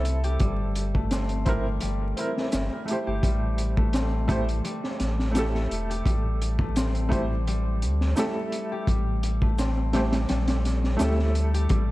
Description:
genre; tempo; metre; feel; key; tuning
trip hop; 85 BPM; 4/4; swing 54% on 16ths; unclear; A4 = 440 Hz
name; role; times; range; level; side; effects
felt-muted upright piano; accompaniment; 0.0-11.9 s; A3 to C5; -31 LUFS; right 1 dB; tremolo, tape echo
concert harp; arpeggios; 0.0-11.9 s; G3 to G4; -32 LUFS; left 3 dB; vintage 12-bit sampler grit, tape echo
warm sub bass; bass; 0.0-11.9 s; E1 to D2; -26 LUFS; equal; none
crunchy breakbeat drum kit; drums; 0.0-11.9 s; hi-hat, kick drum, snare drum; -28 LUFS; equal; none
maracas; percussion; 1.1-11.2 s; none; -46 LUFS; right 1 dB; none
room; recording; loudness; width
light reverb, small room ambience; dark, warm production, vinyl crackle; -23 LUFS; side -18 dB against mid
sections
0.0-11.9 A section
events
none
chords
0.0 C7/G; 3.2 Emadd11; 8.9 Am7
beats
| 0.41 1.12 1.82 2.53 | 3.23 3.94 4.65 5.35 | 6.06 6.76 7.47 8.18 | 8.88 9.59 10.29 11.00 | 11.71

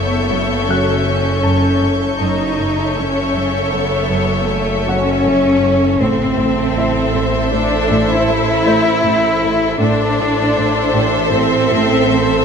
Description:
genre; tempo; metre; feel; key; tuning
cinematic, suspense film score; 79 BPM; 5/4; straight; unclear; A4 = 440 Hz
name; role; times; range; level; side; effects
rich studio violin section; melody; 0.0-12.4 s; E5; -26 LUFS; left 3 dB; none
rich studio violin section; second line; 0.0-12.4 s; C5 to C#5; -22 LUFS; left 2 dB; none
rich studio viola section; accompaniment; 0.0-12.4 s; A4; -23 LUFS; right 1 dB; none
rich studio cello section; riff; 0.0-12.3 s; F#2 to A3; -22 LUFS; right 1 dB; none
rich studio cello section; bass; 0.0-12.4 s; A3 to E4; -17 LUFS; left 1 dB; none
rich studio double bass section; bass; 0.0-12.4 s; F#1 to A1; -23 LUFS; right 3 dB; none
bowed-like drone; drone; 0.0-12.4 s; F#1 to A1; -26 LUFS; equal; built-in reverb, phaser
warm studio violin section; texture; 0.0-5.6 s; C#6 to G6; -26 LUFS; left 4 dB; none
bright baby grand piano; texture; 0.7-12.4 s; E4 to F#6; -28 LUFS; left 2 dB; none
room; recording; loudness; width
moderate scoring stage reverb, RT60 1.6 s; none; -13 LUFS; side -6 dB against mid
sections
0.0-12.4 A section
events
none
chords
0.0 F#m7; 6.0 Am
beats
0.69 1.45 | 2.21 2.97 3.73 4.49 5.24 | 6.00 6.76 7.52 8.28 9.04 | 9.80 10.56 11.32 12.08

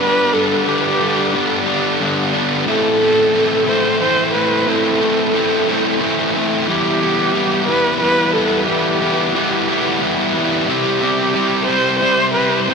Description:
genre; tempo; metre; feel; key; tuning
rock; 60 BPM (dotted quarters); 6/8; straight; E minor; A4 = 438 Hz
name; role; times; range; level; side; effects
dark viola; melody; 0.0-12.7 s; G4 to C5; -18 LUFS; equal; tape echo
fuzz guitar; riff; 0.0-12.7 s; G2 to E4; -16 LUFS; equal; distortion
room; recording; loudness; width
wet huge ambient reverb, RT60 7.0 s; dreamy mix soaked in reverb; -14 LUFS; side -5 dB against mid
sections
0.0-12.7 A section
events
none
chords
0.0 G; 2.7 Am; 6.7 Em; 10.7 C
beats
| 0.67 1.67 | 2.67 3.67 | 4.67 5.67 | 6.67 7.67 | 8.67 9.68 | 10.68 11.69 | 12.70

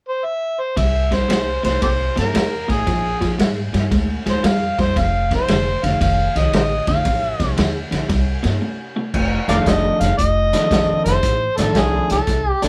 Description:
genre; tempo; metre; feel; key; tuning
electric blues shuffle; 115 BPM; 4/4; swing 66% on 8ths; F mixolydian; A4 = 440 Hz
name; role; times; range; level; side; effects
overdriven harmonica; melody; 0.1-12.7 s; G4 to F5; -22 LUFS; equal; none
electric guitar through a small old amp; riff; 0.8-12.7 s; F2 to D4; -25 LUFS; equal; none
upright bass; bass; 0.8-12.7 s; F1 to Ab2; -24 LUFS; equal; none
vintage drum kit; drums; 0.8-12.7 s; crash cymbal, hi-hat, kick drum, ride cymbal, snare drum; -24 LUFS; equal; none
room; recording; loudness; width
moderate studio reverb, RT60 0.6 s; band playing live in one room; -18 LUFS; mono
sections
0.8-9.1 A section; 9.1-12.7 B section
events
break 8.6-9.1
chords
0.0 N.C.; 0.8 C7; 2.9 Bb7; 5.0 F7; 8.1 C5; 9.1 F6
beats
0.25 | 0.77 1.30 1.82 2.35 | 2.87 3.39 3.92 4.44 | 4.96 5.49 6.01 6.53 | 7.06 7.58 8.10 8.62 | 9.15 9.67 10.19 10.71 | 11.24 11.76 12.28

